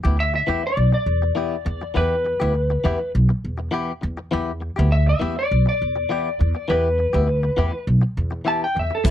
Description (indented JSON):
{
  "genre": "straight-eighth soul blues",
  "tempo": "102 BPM",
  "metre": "4/4",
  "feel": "swing 54% on 16ths",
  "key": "E minor",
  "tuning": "A4 = 439 Hz",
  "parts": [
    { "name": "direct-recorded clean electric guitar", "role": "stabs", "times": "0.0-9.1 s", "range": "A2 to G4", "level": "-26 LUFS", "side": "left 3 dB", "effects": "wide subtle chorus" },
    { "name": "upright bass", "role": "bass", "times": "0.0-9.1 s", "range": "A1 to E2", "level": "-20 LUFS", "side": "equal", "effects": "none" },
    { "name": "electric slide guitar", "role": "melody", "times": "0.2-9.1 s", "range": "A4 to A5", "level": "-22 LUFS", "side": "left 1 dB", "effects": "none" },
    { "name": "warm soul drum kit", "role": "drums", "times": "9.0-9.1 s", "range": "hi-hat, kick drum", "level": "-15 LUFS", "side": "equal", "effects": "none" }
  ],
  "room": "little or no reverb",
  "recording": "none",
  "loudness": "-19 LUFS",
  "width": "side -11 dB against mid",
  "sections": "0.0-9.1 A section",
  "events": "none",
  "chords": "0.0 Em"
}